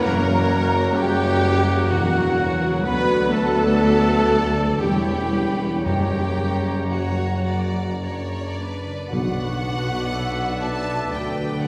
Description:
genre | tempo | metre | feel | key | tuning
classical | 51-64 BPM | 3/4 | rubato | B minor | A4 = 440 Hz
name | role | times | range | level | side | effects
clear symphonic violin section | melody | 0.0-11.7 s | A#4 to A5 | -36 LUFS | equal | none
bright clarinet | second line | 0.0-11.7 s | B4 to C#5 | -36 LUFS | equal | none
bright oboe | second line | 0.0-11.7 s | D5 to B5 | -36 LUFS | equal | none
dark symphonic violin section | second line | 0.0-11.7 s | D4 to B5 | -35 LUFS | equal | none
silver concert flute | second line | 0.0-11.7 s | F#5 to D6 | -34 LUFS | equal | none
rich symphonic viola section | accompaniment | 0.0-11.7 s | F#3 to B4 | -29 LUFS | equal | none
clear trombone section | sustained chords | 0.0-9.5 s | B2 to B3 | -34 LUFS | equal | none
dark French horn section | sustained chords | 0.0-9.5 s | B3 to F#4 | -32 LUFS | equal | none
concert harp | arpeggios | 0.0-11.7 s | F#2 to C#6 | -36 LUFS | equal | none
warm trumpet | stabs | 0.0-8.0 s | F#4 to B4 | -33 LUFS | equal | none
dark symphonic cello section | bass | 0.0-11.7 s | B2 to B3 | -29 LUFS | equal | none
rich symphonic double bass section | bass | 0.0-11.7 s | B1 to F#2 | -29 LUFS | equal | none
warm tuba | bass | 0.0-11.7 s | E1 to D2 | -29 LUFS | equal | none
timpani | percussion | 5.9-10.6 s | F#2 to B2 | -31 LUFS | equal | none
room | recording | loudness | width
wet concert hall reverb, RT60 2.1 s | heard from further back in the room | -21 LUFS | mono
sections
0.0-9.1 A section; 9.1-11.7 B section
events
none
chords
0.0 F#; 2.9 Bm/D; 4.8 C#m7b5/E; 5.9 F#; 9.1 Bm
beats
| 0.02 0.97 1.91 | 2.86 3.82 4.82 | 5.86 6.92 8.06 | 9.12 10.11 11.11

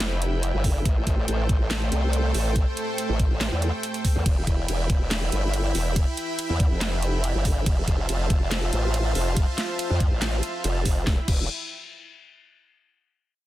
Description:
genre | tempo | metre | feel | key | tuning
heavy wobble dubstep | 141 BPM | 4/4 | half-time | E phrygian | A4 = 440 Hz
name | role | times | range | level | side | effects
supersaw pad | sustained chords | 0.0-11.3 s | A3 to B5 | -30 LUFS | right 1 dB | sidechain pumping
formant-sweep wobble bass | bass | 0.0-11.5 s | E1 to F2 | -25 LUFS | equal | chorus, overdrive
dubstep drum kit | drums | 0.0-11.4 s | crash cymbal, handclaps, hi-hat, ride cymbal, snare drum | -31 LUFS | right 1 dB | none
electronic kick drum | drums | 0.6-11.4 s | none | -22 LUFS | equal | none
room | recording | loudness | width
little or no reverb | dense, heavily limited modern master | -22 LUFS | side -15 dB against mid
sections
0.0-11.1 A section; 11.1-12.8 B section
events
drop 0.0-11.1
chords
0.0 Em; 0.9 Am7; 4.3 Em; 7.7 Fmaj7; 11.1 Em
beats
0.00 0.43 | 0.85 1.28 1.71 2.13 | 2.56 2.98 3.41 3.83 | 4.26 4.68 5.11 5.54 | 5.96 6.39 6.81 7.24 | 7.66 8.09 8.51 8.94 | 9.37 9.79 10.22 10.64 | 11.07

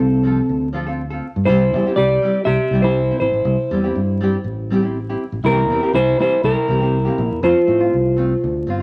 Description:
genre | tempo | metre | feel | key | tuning
highlife guitar band | 121 BPM | 4/4 | straight | C major | A4 = 437 Hz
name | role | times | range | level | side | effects
clean electric guitar | melody | 0.0-8.8 s | C4 to E5 | -20 LUFS | equal | none
fingered electric bass | bass | 0.0-8.8 s | G1 to A2 | -23 LUFS | equal | none
nylon-string guitar | accompaniment | 0.2-8.8 s | E3 to A4 | -24 LUFS | equal | none
room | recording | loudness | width
moderate large studio reverb, RT60 1.0 s | vinyl crackle | -18 LUFS | mono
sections
0.0-8.8 A section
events
none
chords
0.0 F; 1.5 C; 5.4 C7; 7.4 F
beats
0.47 0.97 | 1.47 1.96 2.46 2.96 | 3.45 3.95 4.45 4.94 | 5.44 5.93 6.43 6.93 | 7.43 7.92 8.42

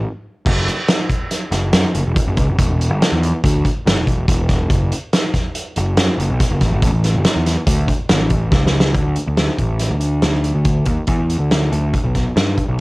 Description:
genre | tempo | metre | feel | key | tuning
math rock and midwest emo | 141 BPM | 5/4 | straight | D major | A4 = 440 Hz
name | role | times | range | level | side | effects
fuzz picked electric bass | bass | 0.0-12.8 s | E1 to G2 | -17 LUFS | equal | overdrive
loose indie drum kit | drums | 0.5-12.7 s | crash cymbal, hi-hat, kick drum, snare drum | -17 LUFS | equal | none
room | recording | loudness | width
little or no reverb | home recording on cassette | -14 LUFS | side -22 dB against mid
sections
0.5-9.0 A section; 9.0-12.8 B section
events
break 0.0-0.5; drum fill 8.5-9.0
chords
none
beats
0.04 | 0.46 0.89 1.31 1.73 2.16 | 2.58 3.00 3.43 3.85 4.28 | 4.70 5.13 5.55 5.98 6.40 | 6.83 7.25 7.68 8.10 8.53 | 8.95 9.38 9.81 10.23 10.66 | 11.09 11.51 11.94 12.37 12.79

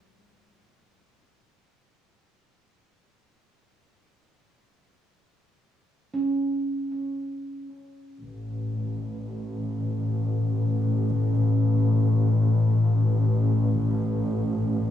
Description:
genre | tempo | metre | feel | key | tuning
ambient | free time | none | none | A major | A4 = 439 Hz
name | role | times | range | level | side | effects
handpan | arpeggios | 0.0-10.0 s | G#3 to C#4 | -29 LUFS | right 3 dB | cassette tape, analog delay
dark studio double bass section | bass | 8.2-14.9 s | A1 | -22 LUFS | left 1 dB | none
room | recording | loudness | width
moderate studio reverb, RT60 0.6 s | home recording on cassette, studio reverb | -22 LUFS | side -10 dB against mid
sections
0.0-8.2 A section; 8.2-14.9 B section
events
fade-out on handpan 0.0-8.2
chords
0.0 N.C.; 8.2 A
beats
free time

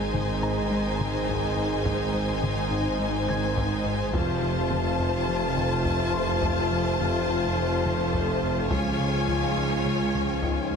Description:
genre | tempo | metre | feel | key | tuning
cinematic, hybrid orchestral and electronic film score | 105 BPM | 4/4 | straight | unclear | A4 = 438 Hz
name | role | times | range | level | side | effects
warm symphonic violin section | melody | 0.0-10.8 s | Ab5 to A5 | -32 LUFS | left 5 dB | none
rich symphonic violin section | second line | 0.0-10.8 s | C5 to Db5 | -33 LUFS | left 2 dB | none
rich symphonic viola section | accompaniment | 0.0-10.8 s | Eb4 to F4 | -33 LUFS | left 1 dB | none
dark trombone section | sustained chords | 0.0-10.8 s | Ab2 to A3 | -35 LUFS | right 4 dB | none
lush unison pad | sustained chords | 0.0-10.8 s | F3 to Ab5 | -36 LUFS | equal | none
mellow French horn section | sustained chords | 0.0-10.8 s | C4 to F4 | -34 LUFS | left 6 dB | none
rubbery square bass | riff | 0.0-10.8 s | Db2 to Ab3 | -33 LUFS | left 3 dB | none
dark symphonic double bass section | bass | 0.0-10.8 s | F1 to Db2 | -33 LUFS | right 4 dB | none
rich symphonic cello section | bass | 0.0-10.8 s | Db2 to Ab2 | -33 LUFS | right 3 dB | none
saturated sub bass | bass | 0.0-10.8 s | F1 to Db2 | -37 LUFS | equal | none
warm tuba | bass | 0.0-10.8 s | F1 to Db2 | -34 LUFS | right 5 dB | none
felt-muted upright piano | texture | 0.0-10.8 s | Eb4 to Ab6 | -40 LUFS | left 3 dB | none
taiko ensemble | drums | 0.1-10.8 s | none | -35 LUFS | equal | none
room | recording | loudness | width
moderate scoring stage reverb, RT60 1.8 s | heavily compressed radio sound, multiband compression | -23 LUFS | side -6 dB against mid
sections
0.0-10.8 A section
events
none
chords
0.0 Ab; 4.1 F; 8.7 Db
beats
0.14 0.71 1.28 | 1.85 2.42 3.00 3.57 | 4.14 4.71 5.28 5.85 | 6.42 7.00 7.57 8.14 | 8.71 9.28 9.85 10.43

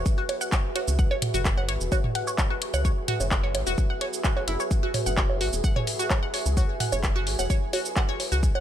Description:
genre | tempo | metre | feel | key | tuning
minimal techno | 129 BPM | 4/4 | straight | unclear | A4 = 440 Hz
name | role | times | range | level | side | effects
rubbery square bass | bass | 0.0-8.5 s | E1 to C#2 | -27 LUFS | equal | sidechain pumping
deep dark ambient pad | texture | 0.0-8.6 s | F#4 to G#5 | -34 LUFS | right 1 dB | chorus, built-in reverb, sidechain pumping
flickering grainy texture | texture | 0.0-8.6 s | G#4 | -39 LUFS | right 1 dB | built-in reverb, sidechain pumping
electronic kick drum | drums | 0.1-8.5 s | none | -24 LUFS | equal | studio reverb
house drum kit | drums | 0.1-8.5 s | handclaps, hi-hat, shaker | -30 LUFS | equal | studio reverb
resonant blip pluck | riff | 0.2-8.6 s | E4 to F#5 | -32 LUFS | left 1 dB | phaser, sidechain pumping, ping-pong delay
electronic bongos and toms | percussion | 0.3-8.6 s | none | -32 LUFS | right 3 dB | studio reverb, ping-pong delay
room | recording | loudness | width
little or no reverb | none | -23 LUFS | side -10 dB against mid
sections
0.0-8.6 A section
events
none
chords
0.0 F#sus4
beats
0.06 0.52 | 0.99 1.45 1.92 2.38 | 2.85 3.31 3.78 4.24 | 4.71 5.17 5.64 6.11 | 6.57 7.04 7.50 7.96 | 8.43

